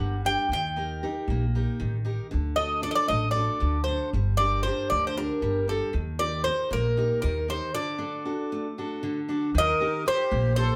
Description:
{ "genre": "greek folk, Greek bouzouki band", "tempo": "232 BPM (eighths)", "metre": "7/8", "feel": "straight", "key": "unclear", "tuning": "A4 = 443 Hz", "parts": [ { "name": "Greek bouzouki", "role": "melody", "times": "0.0-10.8 s", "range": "A4 to G5", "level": "-29 LUFS", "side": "equal", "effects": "none" }, { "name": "picked steel-string acoustic guitar", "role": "accompaniment", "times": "0.0-10.8 s", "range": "D3 to Bb4", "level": "-34 LUFS", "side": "equal", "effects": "none" }, { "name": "upright bass", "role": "bass", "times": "0.0-10.7 s", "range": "G1 to Eb2", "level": "-30 LUFS", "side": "equal", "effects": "none" }, { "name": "accordion", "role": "second line", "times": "9.6-10.8 s", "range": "G4 to Bb4", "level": "-34 LUFS", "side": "equal", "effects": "light tremolo tuning" } ], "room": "wet small room reverb, RT60 0.6 s", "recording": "heard from further back in the room", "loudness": "-27 LUFS", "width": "mono", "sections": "0.0-9.5 A section; 9.5-10.8 B section", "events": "break 7.7-9.5", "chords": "0.5 Eb; 2.3 D; 4.1 Gm; 5.9 Eb; 7.7 D; 9.5 Eb", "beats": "0.23 | 0.49 0.75 1.01 1.27 1.53 1.79 2.05 | 2.31 2.57 2.83 3.09 3.35 3.61 3.87 | 4.13 4.39 4.65 4.91 5.16 5.42 5.68 | 5.94 6.20 6.45 6.71 6.97 7.23 7.48 | 7.74 8.00 8.26 8.51 8.77 9.02 9.28 | 9.54 9.79 10.05 10.30 10.56" }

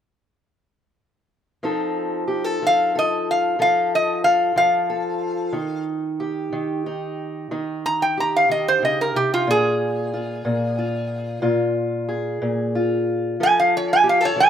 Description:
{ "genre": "acoustic country blues, solo or duo", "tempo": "61 BPM (dotted quarters)", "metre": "12/8", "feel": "straight", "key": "unclear", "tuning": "A4 = 441 Hz", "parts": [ { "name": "fingerpicked steel-string acoustic guitar", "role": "accompaniment", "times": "1.6-14.5 s", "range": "Bb2 to A4", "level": "-23 LUFS", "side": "left 1 dB", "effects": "none" }, { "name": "metal-body resonator slide guitar", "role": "melody", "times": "2.7-14.5 s", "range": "F4 to Bb5", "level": "-17 LUFS", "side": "right 1 dB", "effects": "none" } ], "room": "light reverb, small room ambience", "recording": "rough home demo mix", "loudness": "-19 LUFS", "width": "side -9 dB against mid", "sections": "1.6-14.5 A section", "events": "none", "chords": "1.6 F7; 5.5 Eb; 9.5 Bb5; 13.4 F", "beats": "| 1.63 2.61 3.59 4.57 | 5.54 6.53 7.50 8.49 | 9.47 10.45 11.43 12.41 | 13.39 14.38" }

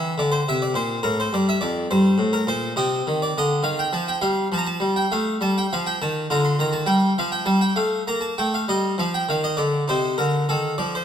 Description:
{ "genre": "classical, baroque-style suite movement for harpsichord", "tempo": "68 BPM (dotted quarters)", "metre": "12/8", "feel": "rubato", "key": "Bb major", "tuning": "A4 = 436 Hz", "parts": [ { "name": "harpsichord", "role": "solo", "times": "0.0-11.0 s", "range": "F2 to C6", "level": "-20 LUFS", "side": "equal", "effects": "none" } ], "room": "moderate scoring stage reverb, RT60 1.7 s", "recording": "close, detailed microphones", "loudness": "-20 LUFS", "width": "side -9 dB against mid", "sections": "0.0-11.0 A section", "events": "none", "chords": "0.0 F (rootless); 2.8 F7/C; 6.3 Bb/D; 9.9 Cm", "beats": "0.19 1.05 1.91 | 2.78 3.65 4.53 5.42 | 6.30 7.19 8.09 9.01 | 9.91 10.80" }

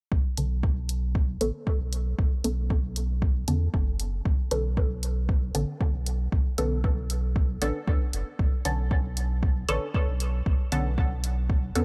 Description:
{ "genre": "dub techno", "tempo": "116 BPM", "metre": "4/4", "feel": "straight", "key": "B minor", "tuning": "A4 = 441 Hz", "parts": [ { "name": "warm sub bass", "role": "bass", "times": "0.1-11.8 s", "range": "F#1 to E2", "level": "-30 LUFS", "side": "equal", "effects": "sidechain pumping" }, { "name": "electronic kick drum", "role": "drums", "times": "0.1-11.6 s", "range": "none", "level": "-28 LUFS", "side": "equal", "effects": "overdrive, studio ambience" }, { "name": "filtered dub chord stab", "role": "stabs", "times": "0.4-11.8 s", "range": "D3 to A4", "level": "-35 LUFS", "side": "equal", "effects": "phaser, sidechain pumping, dub echo" }, { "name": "electronic hi-hat", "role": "drums", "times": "0.4-11.8 s", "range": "none", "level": "-36 LUFS", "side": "equal", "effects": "overdrive, studio ambience" } ], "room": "little or no reverb", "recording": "dark, warm production", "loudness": "-27 LUFS", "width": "mono", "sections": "0.1-11.8 A section", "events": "none", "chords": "0.1 Bm9", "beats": "| 0.12 0.63 1.15 1.67 | 2.19 2.70 3.22 3.74 | 4.25 4.77 5.29 5.81 | 6.32 6.84 7.36 7.88 | 8.39 8.91 9.43 9.94 | 10.46 10.98 11.50" }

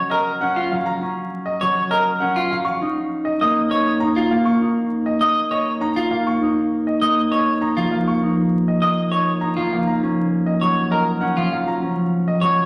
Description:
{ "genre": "classical, minimalist pattern music", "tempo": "100 BPM", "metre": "3/4", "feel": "straight", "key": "unclear", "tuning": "A4 = 439 Hz", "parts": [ { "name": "concert harp", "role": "accompaniment", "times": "0.0-12.7 s", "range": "E#3 to D#4", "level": "-23 LUFS", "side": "equal", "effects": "none" }, { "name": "bright baby grand piano", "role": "melody", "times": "0.1-12.5 s", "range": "D#5 to C#6", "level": "-29 LUFS", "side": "equal", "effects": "none" }, { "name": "clean electric guitar", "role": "arpeggios", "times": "0.1-12.6 s", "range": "E#4 to D#5", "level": "-23 LUFS", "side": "equal", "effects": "none" } ], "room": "wet recital hall reverb, RT60 1.5 s", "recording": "tape saturation, vinyl crackle", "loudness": "-20 LUFS", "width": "mono", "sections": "0.0-12.7 A section", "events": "none", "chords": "0.0 F#maj7; 2.7 A#m; 9.9 F#maj7", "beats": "0.26 | 0.86 1.46 2.06 | 2.66 3.26 3.86 | 4.46 5.06 5.66 | 6.26 6.86 7.46 | 8.06 8.66 9.26 | 9.86 10.46 11.06 | 11.66 12.26" }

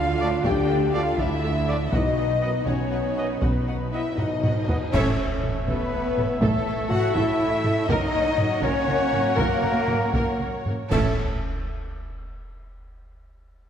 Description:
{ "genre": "cinematic, epic orchestral film score", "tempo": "80 BPM (dotted quarters)", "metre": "6/8", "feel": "straight", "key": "A lydian", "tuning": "A4 = 440 Hz", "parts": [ { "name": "warm symphonic violin section", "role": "melody", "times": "0.0-11.2 s", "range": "A4 to A5", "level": "-33 LUFS", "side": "left 5 dB", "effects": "none" }, { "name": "silver concert flute", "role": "second line", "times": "0.0-11.2 s", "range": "A4 to A5", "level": "-33 LUFS", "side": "left 3 dB", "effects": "none" }, { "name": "warm symphonic violin section", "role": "second line", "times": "0.0-11.2 s", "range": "A4 to G5", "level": "-36 LUFS", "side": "left 1 dB", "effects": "none" }, { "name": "rich symphonic viola section", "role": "accompaniment", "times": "0.0-11.2 s", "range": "A4 to D#5", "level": "-34 LUFS", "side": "right 1 dB", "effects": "none" }, { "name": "clear symphonic string section", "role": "sustained chords", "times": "0.0-11.2 s", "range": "A3 to D5", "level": "-36 LUFS", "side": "equal", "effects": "none" }, { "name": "mellow French horn section", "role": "sustained chords", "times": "0.0-11.1 s", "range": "A3 to G4", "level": "-28 LUFS", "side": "left 3 dB", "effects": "none" }, { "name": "warm symphonic cello section", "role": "bass", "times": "0.0-11.2 s", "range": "B2 to F#4", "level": "-30 LUFS", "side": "right 2 dB", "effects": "none" }, { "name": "warm symphonic double bass section", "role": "bass", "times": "0.0-11.2 s", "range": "F#1 to D2", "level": "-30 LUFS", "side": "right 2 dB", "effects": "none" }, { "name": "bright trombone section", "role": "sustained chords", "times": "0.2-11.1 s", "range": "F#2 to C#4", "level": "-34 LUFS", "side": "right 3 dB", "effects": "none" }, { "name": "warm trumpet", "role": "stabs", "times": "0.2-11.1 s", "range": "D5 to F#5", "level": "-33 LUFS", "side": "right 2 dB", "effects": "none" }, { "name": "taiko ensemble", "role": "drums", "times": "0.4-11.9 s", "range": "none", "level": "-28 LUFS", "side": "equal", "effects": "none" }, { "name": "cymbal swell, clash cymbals and concert bass drum", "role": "percussion", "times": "1.9-5.9, 10.9-11.9 s", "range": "none", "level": "-33 LUFS", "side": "equal", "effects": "none" } ], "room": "wet concert hall reverb, RT60 2.2 s", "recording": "none", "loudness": "-21 LUFS", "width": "side -8 dB against mid", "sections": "0.0-4.9 A section; 4.9-10.9 B section; 10.9-12.5 C section", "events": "drum fill 4.2-4.9; band accent 4.9-5.4, 10.9-11.4", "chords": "0.0 Dm; 1.9 B; 4.9 A; 7.9 F#; 10.9 A", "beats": "| 0.45 1.19 | 1.93 2.67 | 3.43 4.18 | 4.94 5.68 | 6.42 7.15 | 7.89 8.63 | 9.38 10.14 | 10.92 11.70" }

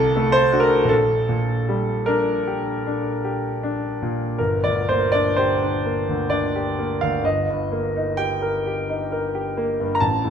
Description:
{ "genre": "classical, romantic nocturne for solo piano", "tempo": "50-68 BPM", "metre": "3/4", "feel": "rubato", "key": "G minor", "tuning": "A4 = 440 Hz", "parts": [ { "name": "clear concert grand piano", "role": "solo", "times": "0.0-10.3 s", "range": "G1 to Bb5", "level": "-19 LUFS", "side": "equal", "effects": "none" } ], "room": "wet recital hall reverb, RT60 1.7 s", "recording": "none", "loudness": "-19 LUFS", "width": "side -8 dB against mid", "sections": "0.0-4.4 A section; 4.4-10.3 B section", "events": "none", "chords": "0.0 D7/C; 0.9 Gm/Bb; 4.4 Gm; 7.2 Eb/G", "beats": "| 0.91 2.08 3.23 | 4.38 5.38 6.32 | 7.25 8.18 9.10 | 10.00" }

